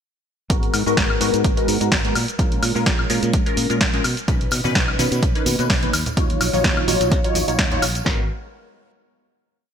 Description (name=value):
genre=filtered disco house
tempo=127 BPM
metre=4/4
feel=swing 54% on 16ths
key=G# dorian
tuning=A4 = 442 Hz
part: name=funky polysynth comp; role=accompaniment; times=0.5-8.2 s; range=A#2 to C#5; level=-22 LUFS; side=equal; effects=chorus, phaser, sidechain pumping
part: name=modern bright fingered electric bass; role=bass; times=0.5-8.3 s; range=G#1 to B2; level=-25 LUFS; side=equal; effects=tube saturation, sidechain pumping
part: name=punchy analog drum machine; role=drums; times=0.5-8.2 s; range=kick drum, snare drum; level=-21 LUFS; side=equal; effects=none
part: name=punchy analog drum machine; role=drums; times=0.5-8.0 s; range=hi-hat, shaker, snare drum, woodblock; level=-22 LUFS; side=equal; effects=none
part: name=congas and tambourine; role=percussion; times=4.3-8.0 s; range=none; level=-31 LUFS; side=right 3 dB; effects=sidechain pumping on perc
room=light reverb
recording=bright 1980s-style digital production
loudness=-17 LUFS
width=side -8 dB against mid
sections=0.5-8.1 drop; 8.1-9.7 final chord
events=drop 0.5-8.1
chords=0.5 G#m9; 2.2 A#m7; 4.0 Bmaj9; 5.9 D#m9; 8.1 G#m9